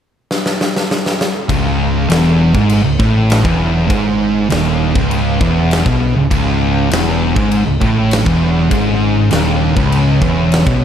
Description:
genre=stoner and doom metal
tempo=100 BPM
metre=4/4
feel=straight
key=C# minor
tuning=A4 = 440 Hz
part: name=big rock drum kit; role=drums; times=0.3-10.8 s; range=crash cymbal, kick drum, snare drum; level=-18 LUFS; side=equal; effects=none
part: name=metallic inharmonic drone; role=sustained chords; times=2.9-10.8 s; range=C#3 to C#4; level=-27 LUFS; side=left 3 dB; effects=none
part: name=thick fuzz guitar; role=riff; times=1.5-10.8 s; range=C#2 to B2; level=-18 LUFS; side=left 7 dB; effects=distortion
part: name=thick fuzz guitar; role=riff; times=1.5-10.8 s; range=C#2 to B2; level=-16 LUFS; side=right 6 dB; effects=distortion
part: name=thick fuzz guitar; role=riff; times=1.5-10.8 s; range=C#2 to B2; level=-19 LUFS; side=equal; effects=distortion
part: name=picked electric bass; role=bass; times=1.5-10.8 s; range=C#1 to B1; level=-19 LUFS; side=equal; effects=overdrive
room=little or no reverb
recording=none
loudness=-11 LUFS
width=side -9 dB against mid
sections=0.0-1.5 A section; 1.5-10.8 B section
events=drum fill 0.3-1.5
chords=0.0 N.C.; 1.5 C#m

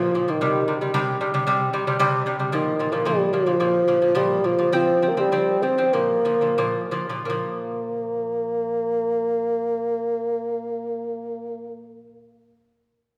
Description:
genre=mongolian traditional, Mongolian folk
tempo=84-113 BPM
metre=4/4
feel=straight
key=Bb zhi mode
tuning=A4 = 440 Hz
part: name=dark bassoon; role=melody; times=0.0-12.1 s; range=Eb3 to C4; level=-24 LUFS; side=equal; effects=none
part: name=lute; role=arpeggios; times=0.0-12.1 s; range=Bb2 to C4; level=-26 LUFS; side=equal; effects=none
room=wet recital hall reverb, RT60 1.6 s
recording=recorded in a church or concert hall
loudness=-23 LUFS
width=mono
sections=0.0-7.3 A section; 7.3-13.0 B section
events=slowing down 2.5-7.3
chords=0.4 C5; 2.5 Bb5; 4.7 F5; 5.9 Bb5

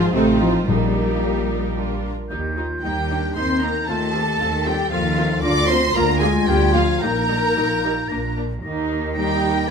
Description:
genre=quick classical-period movement for symphony orchestra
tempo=113 BPM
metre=3/4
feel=straight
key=Eb major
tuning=A4 = 440 Hz
part: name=rich studio violin section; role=melody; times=0.0-9.7 s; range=Bb4 to D6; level=-25 LUFS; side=right 1 dB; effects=none
part: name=warm studio violin section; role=second line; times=0.0-9.7 s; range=Bb3 to D5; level=-27 LUFS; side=equal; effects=none
part: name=rich studio viola section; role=accompaniment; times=0.0-9.7 s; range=G3 to Ab4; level=-28 LUFS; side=right 3 dB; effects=none
part: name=dark French horn section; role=sustained chords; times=0.0-9.7 s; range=Ab2 to D4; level=-25 LUFS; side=left 4 dB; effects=none
part: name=rich studio cello section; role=bass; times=0.0-9.7 s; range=Bb2 to A3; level=-26 LUFS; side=equal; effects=none
part: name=rich studio double bass section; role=bass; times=0.0-9.7 s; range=Ab1 to Eb2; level=-25 LUFS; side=right 2 dB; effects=none
part: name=clear clarinet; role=second line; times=0.2-9.7 s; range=D4 to A4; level=-28 LUFS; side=left 2 dB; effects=none
part: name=timpani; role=percussion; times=0.7-1.5 s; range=Bb2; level=-25 LUFS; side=left 6 dB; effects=none
part: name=mellow hollow silver concert flute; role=second line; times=2.3-9.7 s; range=G6 to Bb6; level=-28 LUFS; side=left 1 dB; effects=none
room=moderate stone room reverb, RT60 1.0 s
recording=none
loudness=-18 LUFS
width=side -6 dB against mid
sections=0.0-2.3 A section; 2.3-9.7 B section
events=none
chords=0.1 F7/A; 0.7 Eb/Bb; 1.8 Bb; 2.3 Eb; 3.9 F7/Eb; 5.4 Bb/D; 7.0 Eb/Bb; 8.1 Bb; 8.6 Eb

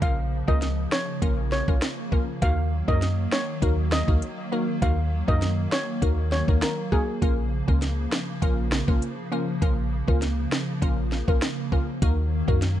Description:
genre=dancehall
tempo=100 BPM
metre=4/4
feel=straight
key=Bb minor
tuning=A4 = 440 Hz
part: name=steel pan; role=melody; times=0.0-7.0 s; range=Ab4 to F5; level=-31 LUFS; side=equal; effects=ping-pong delay
part: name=glassy wavetable pluck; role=accompaniment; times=0.0-12.6 s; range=Bb3 to Bb4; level=-31 LUFS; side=left 1 dB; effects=chorus
part: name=hollow soft pad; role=sustained chords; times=0.0-12.8 s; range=Db3 to Bb3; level=-31 LUFS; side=equal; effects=ensemble chorus, sidechain pumping
part: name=clean 808-style bass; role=bass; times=0.0-12.8 s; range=Bb1 to Gb2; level=-25 LUFS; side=equal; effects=none
part: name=island pop drum kit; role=drums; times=0.0-12.8 s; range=hi-hat, kick drum, rim click, snare drum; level=-25 LUFS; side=equal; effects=vintage 12-bit sampler grit
room=little or no reverb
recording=dark, warm production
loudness=-22 LUFS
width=side -12 dB against mid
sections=0.0-12.8 A section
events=none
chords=0.0 Bbm; 2.4 Ebm; 7.2 Bbm; 12.0 Ebm

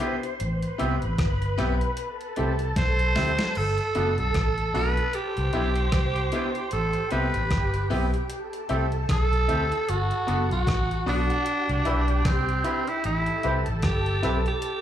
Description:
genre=lovers rock reggae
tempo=76 BPM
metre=4/4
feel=swing 58% on 16ths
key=unclear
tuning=A4 = 438 Hz
part: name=soft string machine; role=second line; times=0.0-14.8 s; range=F#4 to C6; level=-33 LUFS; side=right 1 dB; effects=phaser, ensemble chorus, dub echo, slapback echo
part: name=clear concert grand piano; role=accompaniment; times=0.0-14.4 s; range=A3 to B4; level=-32 LUFS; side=left 4 dB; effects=slapback echo
part: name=electric guitar with an envelope filter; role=stabs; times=0.0-14.4 s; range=B3 to B4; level=-35 LUFS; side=right 7 dB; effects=slapback echo
part: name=crisp 8-bit digital drum machine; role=drums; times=0.0-14.8 s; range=crash cymbal, hi-hat, kick drum, rim click, snare drum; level=-29 LUFS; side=equal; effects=overdrive
part: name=vintage muted fingered electric bass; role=bass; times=0.4-14.4 s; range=F#1 to D2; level=-26 LUFS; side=equal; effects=none
part: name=raspy tenor saxophone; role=melody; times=2.8-14.8 s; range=C4 to C5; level=-27 LUFS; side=right 2 dB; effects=tape echo, slapback echo
room=light reverb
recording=live gig heard through the venue's PA, club reverb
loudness=-22 LUFS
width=side -10 dB against mid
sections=0.0-14.8 A section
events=drum fill 2.8-3.6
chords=0.4 Am9; 2.0 D7sus4; 3.6 Gmaj9; 5.1 Cmaj7; 6.7 Am9; 8.3 D7sus4; 9.9 Gmaj9; 11.5 Cmaj7; 13.0 Am9

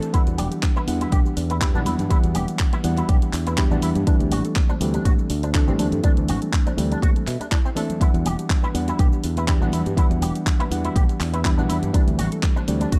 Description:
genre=nu-disco, nu disco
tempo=122 BPM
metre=4/4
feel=swing 54% on 16ths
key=E minor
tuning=A4 = 439 Hz
part: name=reed electric piano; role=accompaniment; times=0.0-13.0 s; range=E3 to F#5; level=-28 LUFS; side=equal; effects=delay
part: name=soft round pluck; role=arpeggios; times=0.0-13.0 s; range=D4 to E5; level=-36 LUFS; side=equal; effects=chorus, sidechain pumping, dub echo
part: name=pop drum kit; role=drums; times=0.0-13.0 s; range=handclaps, hi-hat, shaker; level=-33 LUFS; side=equal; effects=small room reverb
part: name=electric guitar with an envelope filter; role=riff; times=0.1-13.0 s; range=C4 to G4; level=-34 LUFS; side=equal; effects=ensemble chorus, delay
part: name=fingered electric bass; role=bass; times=0.1-13.0 s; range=E1 to B2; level=-27 LUFS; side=equal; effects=sidechain pumping
part: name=electronic kick drum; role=drums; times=0.1-13.0 s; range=none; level=-22 LUFS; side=equal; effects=small room reverb
part: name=congas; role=percussion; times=0.4-13.0 s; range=none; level=-37 LUFS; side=equal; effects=none
room=digital ambience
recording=dark, warm production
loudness=-21 LUFS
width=mono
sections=0.0-13.0 A section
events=none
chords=0.1 Em9; 4.1 D9sus4; 8.0 Em9; 11.9 D9sus4

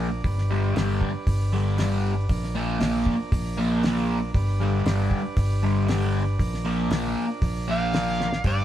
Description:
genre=psychedelic rock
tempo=117 BPM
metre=4/4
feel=straight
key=unclear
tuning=A4 = 440 Hz
part: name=combo organ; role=sustained chords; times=0.0-8.6 s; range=F3 to D5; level=-34 LUFS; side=right 5 dB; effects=spring reverb
part: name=fuzz guitar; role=riff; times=0.0-8.6 s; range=G2 to Bb3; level=-26 LUFS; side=left 1 dB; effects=distortion, phaser
part: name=fingered electric bass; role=bass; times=0.0-8.6 s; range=G1 to Bb1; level=-26 LUFS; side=equal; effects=none
part: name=cloth-damped thuddy drum kit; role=drums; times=0.2-8.6 s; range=hi-hat, kick drum, snare drum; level=-27 LUFS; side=equal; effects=none
part: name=overdriven synth lead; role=melody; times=7.7-8.6 s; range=D5 to F5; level=-26 LUFS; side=right 2 dB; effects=none
room=light reverb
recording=band playing live in one room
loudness=-22 LUFS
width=side -12 dB against mid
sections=0.0-8.4 A section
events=drum fill 8.2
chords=0.2 G; 2.3 Bb; 4.3 G; 6.4 Bb

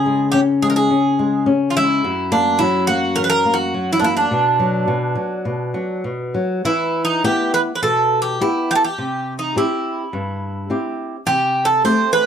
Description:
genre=fado-style ballad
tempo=105 BPM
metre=4/4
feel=rubato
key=B minor, E harmonic minor from 6.6 s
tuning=A4 = 440 Hz
part: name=Greek bouzouki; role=melody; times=0.0-12.3 s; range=D4 to C5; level=-18 LUFS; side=right 2 dB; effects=none
part: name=flamenco guitar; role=accompaniment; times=0.0-12.3 s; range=F#2 to G4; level=-19 LUFS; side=left 2 dB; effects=none
room=light reverb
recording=dry, close 1970s-style studio recording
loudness=-16 LUFS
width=side -8 dB against mid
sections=0.0-6.6 A section; 6.6-12.3 B section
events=none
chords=0.0 C#5; 2.0 F#; 4.3 Bm; 6.6 Em; 9.0 C; 11.3 Am7/C

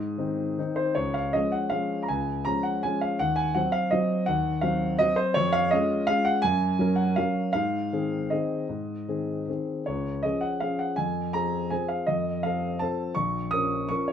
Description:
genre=classical, piano waltz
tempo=149-176 BPM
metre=3/4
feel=rubato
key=Db major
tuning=A4 = 441 Hz
part: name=warm grand piano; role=solo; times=0.0-14.1 s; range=Bb1 to Eb6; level=-24 LUFS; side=equal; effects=none
room=light reverb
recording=none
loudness=-24 LUFS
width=side -8 dB against mid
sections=1.0-14.1 A section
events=none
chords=0.0 Ab; 1.0 Db; 3.2 Cdim/Eb; 5.4 Db/F; 6.4 Gb; 7.5 Ab; 9.9 Db; 11.0 Fm; 12.1 F7; 13.2 Bbm

